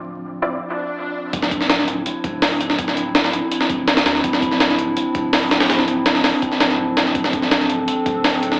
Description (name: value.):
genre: drum and bass, jungle.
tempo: 165 BPM.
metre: 4/4.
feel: straight.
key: D minor.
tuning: A4 = 440 Hz.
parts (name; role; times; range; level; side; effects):
warbly tape-like pad; sustained chords; 0.0-8.6 s; F3 to A4; -25 LUFS; equal; chorus, built-in reverb.
soft dub sub bass; bass; 0.0-8.6 s; D1 to D2; -35 LUFS; equal; none.
orchestra-hit-like synth stab; stabs; 0.4-0.5 s; C4 to D5; -29 LUFS; equal; built-in reverb, dub echo.
swell and sub drop; sound effects; 0.7-2.8 s; none; -32 LUFS; equal; none.
jungle sampler-style drum kit; drums; 1.3-8.6 s; hi-hat, kick drum, snare drum; -20 LUFS; equal; overdrive.
room: light reverb.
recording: vinyl crackle, AM radio sound.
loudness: -19 LUFS.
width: mono.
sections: 0.0-1.3 A section; 1.3-8.6 B section.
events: swell 0.7-1.3; drop 1.3-8.6; impact 1.3-2.8.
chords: 0.0 Dm9.